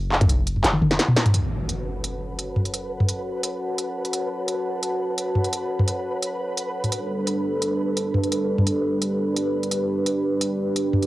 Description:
half-time drum and bass; 172 BPM; 4/4; half-time; F# phrygian; A4 = 440 Hz
long sustained 808-style bass; bass; 0.0-1.0 s; E1 to F#1; -26 LUFS; equal; tube saturation
industrial drum kit; drums; 0.1-11.1 s; handclaps, hi-hat, snare drum, toms; -21 LUFS; equal; studio ambience, cassette tape
dark analog pad; sustained chords; 1.3-11.1 s; G3 to A5; -25 LUFS; right 1 dB; chorus, vintage 12-bit sampler grit, sidechain pumping, cassette tape
impact; sound effects; 1.3-2.7 s; -30 LUFS; equal
flickering grainy texture; texture; 1.7-11.1 s; B4; -33 LUFS; right 1 dB; built-in reverb, cassette tape
moderate small room reverb, RT60 0.5 s; home recording on cassette; -21 LUFS; side -16 dB against mid
0.0-1.3 A section; 1.3-11.1 B section
drum fill 0.6-1.3; band accent 1.2; impact 1.3-2.7
0.0 N.C.; 1.3 F#m; 6.9 G

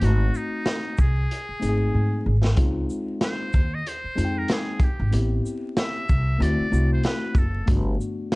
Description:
hip hop, jazz-hop; 94 BPM; 4/4; swing 58% on 16ths; A4 = 440 Hz
trumpet with metal mute; melody; 0.0-7.7 s; D#4 to E5; -31 LUFS; equal
mellow tine electric piano; accompaniment; 0.0-8.4 s; G#3 to G5; -28 LUFS; left 2 dB
upright bass; bass; 0.0-7.9 s; F#1 to G#2; -22 LUFS; equal
crunchy breakbeat drum kit; drums; 0.0-8.4 s; hi-hat, kick drum, shaker, snare drum; -23 LUFS; equal
small room ambience; dark, warm production, vinyl crackle, nothing above 11.0 kHz; -21 LUFS; side -24 dB against mid
0.0-8.4 A section
drum fill 1.9-2.6
0.0 G#7b9; 2.6 C#maj9 (rootless); 5.1 Am7; 6.4 D7; 7.7 Gmaj9

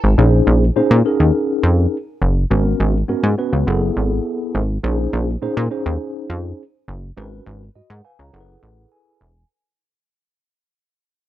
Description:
early-eighties boogie funk; 103 BPM; 4/4; straight; Bb phrygian; A4 = 442 Hz
plucky analog bass; bass; 0.0-9.4 s; Fb1 to Bb2; -16 LUFS; equal
mellow tine electric piano; accompaniment; 0.2-9.5 s; Cb4 to Bb5; -20 LUFS; left 1 dB; medium stereo tremolo
little or no reverb; -15 LUFS; side -13 dB against mid
0.2-9.5 A section
fade-out 0.2-9.5; tine electric piano fill 7.8-9.5
0.2 Bbm11; 2.5 Abm11; 3.7 Gbm11; 4.8 Bbm11; 7.2 Abm11; 8.3 Gbm11

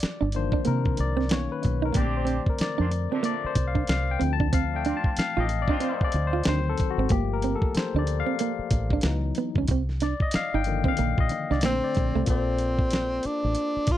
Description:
R&B, neo-soul; 93 BPM; 4/4; swing 60% on 16ths; Bb major; A4 = 440 Hz
barky tine electric piano; accompaniment; 0.0-14.0 s; D3 to A5; -29 LUFS; left 7 dB; overdrive, auto-pan
deep dub fingered electric bass; bass; 0.0-14.0 s; G1 to C3; -27 LUFS; equal
dusty soul sampler-style drum kit; drums; 0.0-14.0 s; hi-hat, kick drum, snare drum; -26 LUFS; equal
hollow-body jazz guitar; second line; 0.2-12.2 s; A3 to F4; -28 LUFS; right 8 dB
mellow horn section; stabs; 1.9-6.1 s; F3 to G4; -35 LUFS; right 6 dB
breathy tenor saxophone; melody; 11.7-14.0 s; C4 to F4; -27 LUFS; equal
little or no reverb; dry, close 1970s-style studio recording; -23 LUFS; side -12 dB against mid
0.0-12.3 A section; 12.3-14.0 B section
tine electric piano solo 0.0-12.3
0.0 Cm11; 1.3 Bmaj9; 1.9 Bbmaj9; 4.2 Dm7; 6.5 D7b9; 7.1 Gm9; 9.0 Dbm11; 9.7 Cm11; 11.6 Bbmaj9

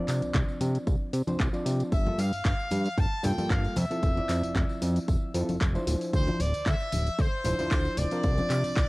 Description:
nu-disco, nu disco; 114 BPM; 4/4; swing 54% on 16ths; G dorian; A4 = 440 Hz
overdriven reed electric piano; accompaniment; 0.0-8.9 s; F3 to D5; -33 LUFS; equal; vintage 12-bit sampler grit, sidechain pumping, cassette tape
fat analog bass; bass; 0.1-8.9 s; D1 to C3; -28 LUFS; equal; tube saturation, sidechain pumping
house drum kit; drums; 0.1-8.9 s; handclaps, hi-hat, tambourine; -37 LUFS; equal; cassette tape
tambourine and congas; percussion; 0.1-8.9 s; -37 LUFS; left 1 dB
electronic kick drum; drums; 0.3-8.9 s; -27 LUFS; equal; cassette tape
bright trumpet section; melody; 1.9-8.9 s; C5 to A5; -33 LUFS; left 1 dB; cassette tape, tape echo
digital ambience; home recording on cassette; -25 LUFS; side -22 dB against mid
0.0-8.9 A section
0.0 Csus24; 1.9 Gm9; 3.8 Fmaj7; 5.9 Dm9; 8.2 Csus24

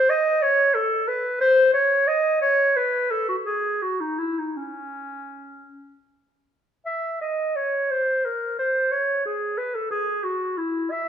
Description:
classical, baroque-style fantasia for unaccompanied clarinet; 51-62 BPM (dotted quarters); 6/8; rubato; C# minor; A4 = 440 Hz
warm clarinet; solo; 0.0-11.1 s; C#4 to E5; -20 LUFS; equal
moderate recital hall reverb, RT60 1.5 s; minimal, uncompressed stereo recording; -20 LUFS; side -8 dB against mid
0.0-6.9 A section; 6.9-11.1 B section

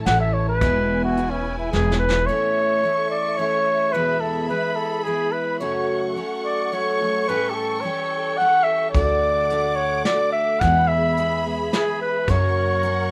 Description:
acoustic folk duo or small band; 108 BPM; 3/4; straight; E mixolydian; A4 = 439 Hz
picked steel-string acoustic guitar; accompaniment; 0.0-13.1 s; E2 to G#4; -30 LUFS; equal
warm symphonic string section; sustained chords; 0.0-13.1 s; E4 to D6; -31 LUFS; equal
upright bass; bass; 0.0-2.3, 9.0-13.1 s; E1 to F#2; -26 LUFS; equal
warm flugelhorn; melody; 0.1-13.1 s; C#4 to F#5; -23 LUFS; equal
soft brush drum kit; drums; 0.1-2.2, 8.9-13.0 s; hi-hat, kick drum, snare drum; -27 LUFS; equal
moderate studio reverb, RT60 0.5 s; rough home demo mix; -21 LUFS; mono
0.0-2.3 A section; 2.3-13.1 B section
flugelhorn solo 0.0-2.3; drum fill 1.7-2.3
0.0 A; 0.6 E; 2.3 A; 4.0 E; 5.6 F#m; 7.3 A7; 8.9 D; 10.6 E; 12.3 F#

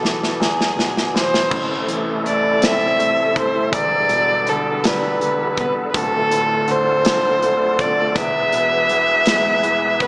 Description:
six-eight pop ballad; 54 BPM (dotted quarters); 6/8; straight; A minor; A4 = 440 Hz
dark violin; melody; 0.0-10.1 s; G#4 to E5; -17 LUFS; equal
clear baby grand piano; accompaniment; 0.0-10.1 s; D1 to E4; -23 LUFS; equal; slapback echo
modern studio drum kit; drums; 0.0-10.1 s; crash cymbal, hi-hat, kick drum, snare drum; -22 LUFS; equal
bright tonewheel organ; sustained chords; 1.5-10.1 s; C3 to B4; -24 LUFS; equal; chorus vibrato, fast rotary speaker
wet lush hall reverb, RT60 2.8 s; big arena sound, small speaker sound; -15 LUFS; side -26 dB against mid
0.0-1.5 A section; 1.5-10.1 B section
drum fill 0.0-1.5
0.0 Esus4; 1.5 Am; 3.7 Em7; 5.9 Dm; 8.2 E

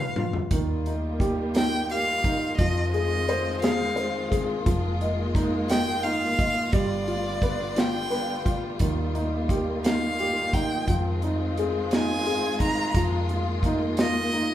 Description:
six-eight pop ballad; 58 BPM (dotted quarters); 6/8; straight; Eb major; A4 = 442 Hz
warm violin; melody; 0.0-14.5 s; D5 to Bb5; -28 LUFS; right 1 dB
warm baby grand piano; accompaniment; 0.0-14.5 s; Eb3 to Eb5; -28 LUFS; left 1 dB
vintage muted fingered electric bass; bass; 0.0-14.5 s; F1 to F2; -31 LUFS; equal
modern studio drum kit; drums; 0.2-14.5 s; hi-hat, kick drum, snare drum, toms; -26 LUFS; equal
warm studio string section; sustained chords; 0.5-14.5 s; D3 to F4; -31 LUFS; left 1 dB
moderate large studio reverb, RT60 0.8 s; band playing live in one room; -23 LUFS; side -12 dB against mid
0.0-14.5 A section
drum fill 0.0-0.5
0.0 G7; 0.5 Ebadd9; 2.6 Fm7; 4.7 Bb7sus4/F; 6.7 G7; 8.8 Ebadd9; 10.9 Fm7; 12.9 Bb7sus4/F

